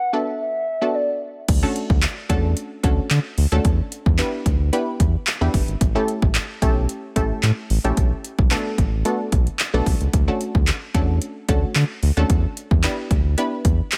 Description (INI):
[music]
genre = dance-pop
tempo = 111 BPM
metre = 4/4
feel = straight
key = D major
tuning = A4 = 436 Hz
[part]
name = hollow clarinet-like synth lead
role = melody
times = 0.0-1.2 s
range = D5 to F#5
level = -26 LUFS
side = equal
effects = chorus, low-pass filter, tape echo
[part]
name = analog pluck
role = accompaniment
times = 0.1-13.7 s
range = A3 to B4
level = -28 LUFS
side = equal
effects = chorus, sidechain pumping, low-pass filter
[part]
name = round analog bass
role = bass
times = 1.5-13.8 s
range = G1 to D3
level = -22 LUFS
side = equal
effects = sidechain pumping
[part]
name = pop drum kit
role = drums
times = 1.5-14.0 s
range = crash cymbal, handclaps, hi-hat, kick drum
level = -23 LUFS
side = equal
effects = overdrive
[sound]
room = little or no reverb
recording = none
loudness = -21 LUFS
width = mono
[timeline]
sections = 0.0-1.5 A section; 1.5-14.0 B section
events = break 0.0-1.5; build-up 0.0-1.5; filter sweep 0.0-1.5; drop 1.5-14.0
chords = 0.0 Bm7; 1.5 Dmaj7; 3.6 Em7; 5.8 A7; 8.0 Bm7; 10.1 Dmaj7; 12.3 Em7